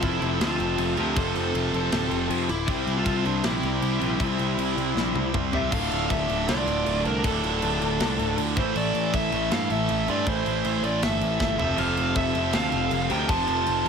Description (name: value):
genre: heavy metal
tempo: 158 BPM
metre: 4/4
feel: straight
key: D minor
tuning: A4 = 440 Hz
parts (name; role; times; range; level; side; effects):
- bluesy overdriven lead guitar; melody; 0.0-13.9 s; D4 to A5; -28 LUFS; left 1 dB; distortion
- nasal lead guitar with a parked wah; second line; 0.0-13.9 s; D4 to C5; -35 LUFS; right 4 dB; overdrive
- pipe organ, foundations; sustained chords; 0.0-13.9 s; F3 to C6; -38 LUFS; equal; none
- distorted electric guitar; riff; 0.0-13.9 s; D2 to C4; -31 LUFS; left 12 dB; distortion
- distorted electric guitar; riff; 0.0-13.9 s; D2 to C4; -29 LUFS; right 13 dB; overdrive
- overdriven electric guitar; riff; 0.0-5.7, 11.8-13.9 s; F2 to C4; -32 LUFS; left 1 dB; none
- fuzz picked electric bass; bass; 0.0-13.9 s; D1 to G2; -30 LUFS; left 1 dB; overdrive
- tight metal drum kit; drums; 0.0-13.9 s; crash cymbal, kick drum, snare drum, toms; -30 LUFS; equal; none
room: light reverb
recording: none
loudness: -22 LUFS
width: side -6 dB against mid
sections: 0.0-5.7 A section; 5.7-13.9 A section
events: half time 0.0-5.7, 5.7-13.9; drum fill 5.0-5.7, 11.4-11.8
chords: 0.0 F; 2.7 C; 5.7 Dm; 8.6 Am; 11.6 F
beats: 0.03 0.41 0.79 | 1.16 1.54 1.92 2.30 | 2.68 3.06 3.44 3.82 | 4.20 4.58 4.96 5.34 | 5.72 6.10 6.48 6.86 | 7.24 7.62 8.00 8.38 | 8.75 9.13 9.51 9.89 | 10.27 10.65 11.03 11.40 | 11.78 12.16 12.54 12.92 | 13.29 13.67